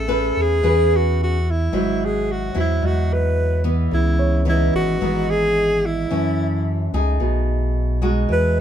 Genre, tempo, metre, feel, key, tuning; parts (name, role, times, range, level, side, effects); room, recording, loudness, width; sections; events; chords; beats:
bossa nova; 110 BPM; 4/4; straight; A4 = 439 Hz
breathy alto saxophone; melody; 0.0-8.6 s; E4 to B4; -22 LUFS; equal
nylon-string guitar; accompaniment; 0.0-8.6 s; F#2 to B4; -22 LUFS; equal
sub bass with octave; bass; 0.0-8.6 s; G#1 to F#2; -21 LUFS; equal
dark grand piano; accompaniment; 4.2-6.1 s; C#5; -28 LUFS; right 6 dB
light reverb; minimal, uncompressed stereo recording; -17 LUFS; side -9 dB against mid
0.0-8.6 A section
0.0 Amaj9; 1.7 G#7alt; 3.9 C#m9; 6.1 F#m7; 7.2 B6
0.09 0.64 1.18 | 1.73 2.28 2.82 3.37 | 3.92 4.46 5.01 5.56 | 6.10 6.65 7.20 7.75 | 8.29